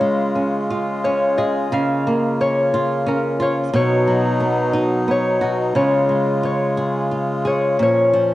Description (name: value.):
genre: children's music, lullaby.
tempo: 88 BPM.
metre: 3/4.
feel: rubato.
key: unclear.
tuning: A4 = 439 Hz.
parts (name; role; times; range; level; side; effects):
concert harp; melody; 0.0-8.3 s; A#4 to E#5; -20 LUFS; left 2 dB; none.
flamenco guitar; accompaniment; 0.0-8.3 s; A#2 to G#4; -21 LUFS; right 2 dB; cassette tape.
hand-pumped harmonium; sustained chords; 0.0-8.3 s; A#2 to E#4; -22 LUFS; left 1 dB; cassette tape.
room: light reverb, small room ambience.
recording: home recording on cassette.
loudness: -16 LUFS.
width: side -15 dB against mid.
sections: 0.0-8.3 A section.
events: none.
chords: 0.0 C#; 1.7 A#m/C#; 3.7 B; 5.7 C#; 7.8 A#m.